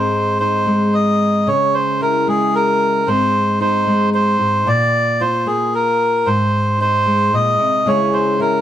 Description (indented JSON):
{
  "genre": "folk",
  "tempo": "112 BPM",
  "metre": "3/4",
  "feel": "straight",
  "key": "Ab major",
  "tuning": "A4 = 440 Hz",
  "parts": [
    { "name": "melodica", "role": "melody", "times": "0.0-8.6 s", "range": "Ab4 to Eb5", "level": "-16 LUFS", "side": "right 1 dB", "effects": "plate reverb" },
    { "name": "fingerpicked steel-string acoustic guitar", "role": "accompaniment", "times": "0.0-8.6 s", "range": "Ab2 to Ab4", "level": "-18 LUFS", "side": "left 1 dB", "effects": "none" }
  ],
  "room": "moderate studio reverb, RT60 0.9 s",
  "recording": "dark, warm production",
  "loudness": "-14 LUFS",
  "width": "side -11 dB against mid",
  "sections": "0.0-8.6 A section",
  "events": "none",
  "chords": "0.0 Ab; 1.5 Dbm; 3.1 Ab; 4.7 Bb; 6.3 Ab; 7.9 Dbm"
}